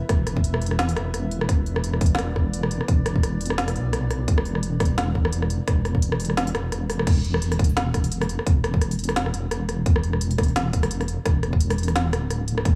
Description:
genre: half-time drum and bass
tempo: 172 BPM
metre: 4/4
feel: swing 56% on 16ths, half-time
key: unclear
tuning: A4 = 442 Hz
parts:
  - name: dark analog pad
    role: sustained chords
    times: 0.0-7.0 s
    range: E4 to E5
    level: -38 LUFS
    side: equal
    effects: chorus, sidechain pumping
  - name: deep soft wobble bass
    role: bass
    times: 0.1-12.8 s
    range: D1 to B1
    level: -27 LUFS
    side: equal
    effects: chorus
  - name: electronic kick drum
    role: drums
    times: 0.1-12.7 s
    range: none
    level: -23 LUFS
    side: equal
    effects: none
  - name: organic electronic drum kit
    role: drums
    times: 0.1-12.7 s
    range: crash cymbal, hi-hat, rim click, snare drum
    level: -30 LUFS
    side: equal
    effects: none
room: little or no reverb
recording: none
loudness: -23 LUFS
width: mono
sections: 0.0-7.1 A section; 7.1-12.8 A section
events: drop 0.0-7.1, 7.1-12.8; drum fill 6.9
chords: 0.0 E5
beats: | 0.09 0.44 0.79 1.14 | 1.49 1.84 2.19 2.54 | 2.88 3.23 3.58 3.93 | 4.28 4.63 4.98 5.33 | 5.67 6.02 6.37 6.72 | 7.07 7.42 7.77 8.12 | 8.47 8.81 9.16 9.51 | 9.86 10.21 10.56 10.91 | 11.26 11.61 11.95 12.30 | 12.65

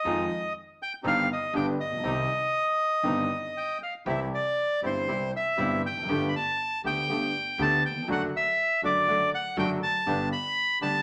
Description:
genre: tango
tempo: 120 BPM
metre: 4/4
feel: rubato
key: C minor, C major from 4.1 s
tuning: A4 = 441 Hz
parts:
  - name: bandoneon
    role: melody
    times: 0.0-11.0 s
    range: C5 to B5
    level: -29 LUFS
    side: equal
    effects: none
  - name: bandoneon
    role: stabs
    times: 0.0-11.0 s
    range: Ab3 to G4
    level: -38 LUFS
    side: equal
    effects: none
  - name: dark concert grand piano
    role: accompaniment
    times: 0.1-11.0 s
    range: G1 to G4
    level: -33 LUFS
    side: equal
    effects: none
  - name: upright bass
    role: bass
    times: 0.1-11.0 s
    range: E1 to F2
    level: -41 LUFS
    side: equal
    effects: none
room: wet studio reverb, RT60 0.7 s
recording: none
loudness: -27 LUFS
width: mono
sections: 0.0-4.1 A section; 4.1-11.0 B section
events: none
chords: 0.0 Fm7; 1.0 Cm/G; 1.5 G; 2.0 Cm; 4.1 C; 6.1 Gadd9; 8.1 D/F#; 10.1 G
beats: | 0.05 0.55 1.04 1.54 | 2.03 2.53 3.04 3.55 | 4.07 4.57 5.08 5.59 | 6.09 6.59 7.09 7.59 | 8.09 8.58 9.08 9.57 | 10.07 10.57

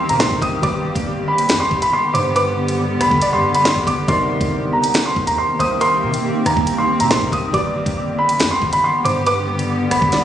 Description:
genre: hip hop, drill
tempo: 139 BPM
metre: 4/4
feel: half-time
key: C minor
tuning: A4 = 440 Hz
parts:
  - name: dark concert grand piano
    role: melody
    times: 0.0-10.2 s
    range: Bb5 to Eb6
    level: -18 LUFS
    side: equal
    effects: digital delay
  - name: soft round pluck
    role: second line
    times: 0.0-10.2 s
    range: Bb4 to D5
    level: -26 LUFS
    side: right 1 dB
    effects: chorus, digital delay
  - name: dark concert grand piano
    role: accompaniment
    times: 0.0-10.2 s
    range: C3 to D5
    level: -27 LUFS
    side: left 1 dB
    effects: none
  - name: granular cloud pad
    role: sustained chords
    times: 0.0-10.2 s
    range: D3 to G4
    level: -22 LUFS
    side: equal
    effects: built-in reverb
  - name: long sustained 808-style bass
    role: bass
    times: 0.0-10.2 s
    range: G1 to C3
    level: -27 LUFS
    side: equal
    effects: none
  - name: drill drum kit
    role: drums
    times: 0.1-10.2 s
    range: handclaps, hi-hat, kick drum, rim click, snare drum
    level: -20 LUFS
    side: equal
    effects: none
room: light reverb, digital ambience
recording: recorded on a phone in the room, studio reverb, nothing above 10.4 kHz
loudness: -15 LUFS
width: side -10 dB against mid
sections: 0.0-10.2 A section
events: none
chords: 0.0 Cm7; 0.6 G; 4.1 Cm7; 7.5 G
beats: 0.20 | 0.63 1.06 1.50 1.93 | 2.36 2.79 3.22 3.65 | 4.08 4.52 4.95 5.38 | 5.81 6.24 6.67 7.11 | 7.54 7.97 8.40 8.83 | 9.27 9.70 10.13

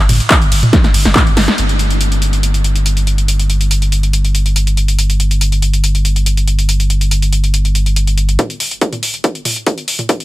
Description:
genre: driving peak-time techno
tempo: 141 BPM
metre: 4/4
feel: straight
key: unclear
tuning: A4 = 440 Hz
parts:
  - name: warm sub bass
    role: bass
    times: 0.0-8.4 s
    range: G1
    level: -13 LUFS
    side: equal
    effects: overdrive, sidechain pumping, low-pass filter
  - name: techno drum kit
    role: drums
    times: 0.1-10.2 s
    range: handclaps, hi-hat, ride cymbal, snare drum, toms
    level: -16 LUFS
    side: equal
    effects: overdrive, high-pass filter on snare, high-pass filter on hats, high-pass filter on cymbals, high-pass filter on toms
  - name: electronic kick drum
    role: drums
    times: 0.3-1.2, 8.4-10.2 s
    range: none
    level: -13 LUFS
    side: equal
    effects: overdrive, high-pass filter on kick
room: little or no reverb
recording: none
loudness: -11 LUFS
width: side -17 dB against mid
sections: 0.0-1.6 A section; 1.6-8.4 B section; 8.4-10.2 C section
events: drop 0.0-1.6; drum fill 0.7-1.6; band accent 1.5; build-up 8.4-10.2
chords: none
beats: 0.30 0.73 1.16 | 1.58 2.01 2.43 2.86 | 3.28 3.71 4.13 4.56 | 4.99 5.41 5.84 6.26 | 6.69 7.11 7.54 7.96 | 8.39 8.82 9.24 9.67 | 10.09

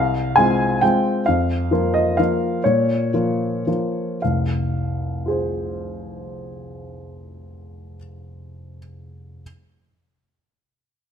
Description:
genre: classical, piano waltz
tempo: 101-142 BPM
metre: 3/4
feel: rubato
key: F minor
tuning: A4 = 440 Hz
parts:
  - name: warm baby grand piano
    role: solo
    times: 0.0-9.4 s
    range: F1 to Ab5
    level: -19 LUFS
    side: left 1 dB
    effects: none
room: light reverb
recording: close, detailed microphones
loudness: -18 LUFS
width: side -7 dB against mid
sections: 0.0-4.2 A section; 4.2-7.3 B section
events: slowing down 0.6-4.2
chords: 0.0 Fm; 1.3 Bbm/F; 4.2 Fm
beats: 0.36 0.82 | 1.27 1.72 2.18 | 2.65 3.13 3.67 | 4.24 4.74 5.26 | 5.78 6.28 6.80

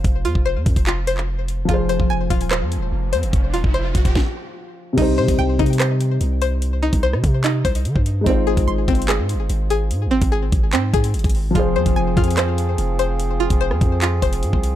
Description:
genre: hip hop, drill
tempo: 146 BPM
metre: 4/4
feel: half-time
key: unclear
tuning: A4 = 440 Hz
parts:
  - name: dark concert grand piano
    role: accompaniment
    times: 0.0-14.8 s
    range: C3 to C5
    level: -25 LUFS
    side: left 2 dB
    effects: none
  - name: string-like resonator pluck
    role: arpeggios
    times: 0.0-14.8 s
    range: C4 to C6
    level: -24 LUFS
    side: left 1 dB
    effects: chorus, ping-pong delay
  - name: long sustained 808-style bass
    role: bass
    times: 0.0-14.8 s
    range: Eb1 to Eb3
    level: -21 LUFS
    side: equal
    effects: none
  - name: drill drum kit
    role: drums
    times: 0.0-14.7 s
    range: crash cymbal, handclaps, hi-hat, kick drum, rim click, snare drum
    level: -20 LUFS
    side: equal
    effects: none
  - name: riser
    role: sound effects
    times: 2.7-4.2 s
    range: none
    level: -32 LUFS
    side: right 1 dB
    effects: none
  - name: pedal harmonium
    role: sustained chords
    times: 11.6-14.8 s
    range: F3 to Ab4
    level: -26 LUFS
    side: right 2 dB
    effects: none
room: digital ambience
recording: dark, warm production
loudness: -16 LUFS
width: side -12 dB against mid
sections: 0.0-5.0 A section; 5.0-14.8 B section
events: riser 2.7-5.0; stop 4.2-5.0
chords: 0.0 Fm; 5.0 Cm; 8.3 Ab6; 11.6 Fm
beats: | 0.04 0.46 0.87 1.28 | 1.69 2.10 2.51 2.92 | 3.33 3.74 4.15 4.57 | 4.98 5.39 5.80 6.21 | 6.62 7.03 7.44 7.85 | 8.26 8.68 9.09 9.50 | 9.91 10.32 10.73 11.14 | 11.55 11.96 12.37 12.79 | 13.20 13.61 14.02 14.43

